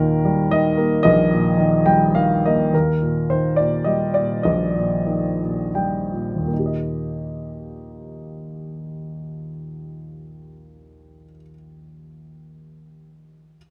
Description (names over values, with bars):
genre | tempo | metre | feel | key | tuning
classical, lyrical solo piano | 74-113 BPM | 3/4 | rubato | Eb major | A4 = 442 Hz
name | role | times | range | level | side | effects
warm grand piano | solo | 0.0-13.6 s | Bb1 to G5 | -21 LUFS | equal | none
room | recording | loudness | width
light reverb | close, detailed microphones | -20 LUFS | mono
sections
0.0-2.7 A section; 2.7-6.5 B section; 6.5-11.1 C section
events
grand piano fill 1.6-2.7, 5.4-6.5; slowing down 2.7-6.5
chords
0.0 Eb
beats
0.51 | 1.04 1.58 2.15 | 2.73 3.30 3.87 | 4.46 5.07 5.75 | 6.51 7.31 8.07 | 8.82 9.56 10.30